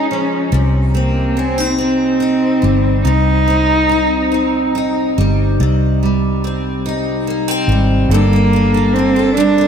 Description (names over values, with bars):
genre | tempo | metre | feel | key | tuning
six-eight pop ballad | 48 BPM (dotted quarters) | 6/8 | straight | unclear | A4 = 440 Hz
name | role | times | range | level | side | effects
warm cello | melody | 0.0-9.7 s | Bb3 to Eb4 | -16 LUFS | right 1 dB | tape echo
picked steel-string acoustic guitar | accompaniment | 0.0-9.7 s | G2 to A4 | -17 LUFS | equal | double-tracked left and right
vintage muted fingered electric bass | bass | 0.0-9.7 s | G1 to Db2 | -16 LUFS | equal | none
room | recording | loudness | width
moderate cathedral reverb, RT60 4.5 s | dreamy mix soaked in reverb | -12 LUFS | side -7 dB against mid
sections
0.0-5.6 A section; 5.6-8.1 B section; 8.1-9.7 C section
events
none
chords
0.0 Db; 0.5 Cm; 8.1 Gmadd9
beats
| 0.53 1.79 | 3.05 4.33 | 5.60 6.85 | 8.10 9.35